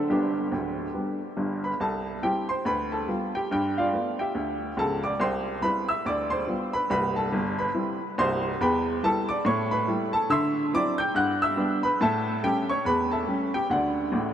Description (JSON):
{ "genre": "jazz, stride piano", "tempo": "141 BPM", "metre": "4/4", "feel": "swing 60% on 8ths", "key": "C major", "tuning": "A4 = 440 Hz", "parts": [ { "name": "clear upright piano", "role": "solo", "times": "0.0-14.3 s", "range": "C1 to G6", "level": "-24 LUFS", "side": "equal", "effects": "none" } ], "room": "wet huge ambient reverb, RT60 6.6 s", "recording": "heard from further back in the room", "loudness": "-24 LUFS", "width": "side -10 dB against mid", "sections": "0.0-1.8 A section; 1.8-14.3 B section", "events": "none", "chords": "0.1 G; 1.8 C; 2.6 G7/D; 3.5 G13; 5.2 C; 6.0 G7/D; 6.9 C; 8.6 Em; 9.5 A7; 10.3 D9; 11.2 G; 12.0 A7; 13.7 D", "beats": "| 0.10 0.52 0.94 1.37 | 1.80 2.22 2.65 3.07 | 3.50 3.92 4.35 4.77 | 5.20 5.62 6.05 6.48 | 6.90 7.33 7.75 8.18 | 8.60 9.03 9.45 9.88 | 10.30 10.73 11.15 11.58 | 12.00 12.43 12.85 13.28 | 13.70 14.13" }